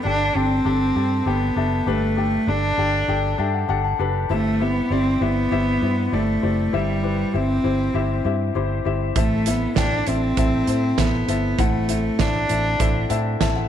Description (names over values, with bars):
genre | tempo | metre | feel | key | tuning
piano-driven pop | 99 BPM | 4/4 | straight | G major | A4 = 440 Hz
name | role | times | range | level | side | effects
warm cello | melody | 0.0-13.1 s | G3 to D4 | -22 LUFS | right 1 dB | none
warm concert grand piano | accompaniment | 0.0-13.7 s | G2 to A5 | -25 LUFS | left 10 dB | none
vintage muted fingered electric bass | bass | 0.0-13.7 s | F#1 to A2 | -24 LUFS | right 2 dB | none
loose indie drum kit | drums | 9.2-13.6 s | hi-hat, kick drum, snare drum | -23 LUFS | right 4 dB | none
room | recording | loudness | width
light reverb, small room reverb | 1960s-style stereo | -18 LUFS | side -9 dB against mid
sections
0.0-13.7 A section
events
grand piano fill 3.1-4.3, 12.8-13.7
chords
0.0 Gsus2; 4.3 C; 9.2 Am